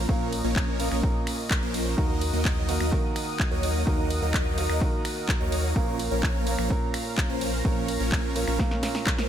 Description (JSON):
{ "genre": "EDM, festival progressive house", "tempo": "127 BPM", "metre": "4/4", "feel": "straight", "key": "Bb minor", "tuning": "A4 = 439 Hz", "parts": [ { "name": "warm grand piano", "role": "accompaniment", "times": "0.0-9.3 s", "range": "Bb2 to Bb4", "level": "-32 LUFS", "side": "right 3 dB", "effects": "sidechain pumping, ping-pong delay" }, { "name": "lush unison pad", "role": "sustained chords", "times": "0.0-9.3 s", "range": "Db4 to Eb6", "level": "-36 LUFS", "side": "left 1 dB", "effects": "chorus, sidechain pumping" }, { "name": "supersaw chords", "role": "riff", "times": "0.0-9.3 s", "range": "F3 to Eb5", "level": "-31 LUFS", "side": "equal", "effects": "phaser, sidechain pumping, ping-pong delay" }, { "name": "saturated sub bass", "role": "bass", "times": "0.0-9.3 s", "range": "Bb1 to Eb2", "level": "-30 LUFS", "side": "equal", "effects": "sidechain pumping" }, { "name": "electronic kick drum", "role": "drums", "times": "0.1-9.2 s", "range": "none", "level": "-27 LUFS", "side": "equal", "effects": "none" }, { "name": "house drum kit", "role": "drums", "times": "0.3-9.3 s", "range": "finger snaps, handclaps, hi-hat, ride cymbal, snare drum", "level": "-32 LUFS", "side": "equal", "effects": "none" } ], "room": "digital ambience", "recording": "none", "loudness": "-23 LUFS", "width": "side -10 dB against mid", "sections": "0.0-9.3 A section", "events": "drum fill 8.6-9.3", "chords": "0.0 Bbm; 2.0 Ebm; 5.8 Bbm" }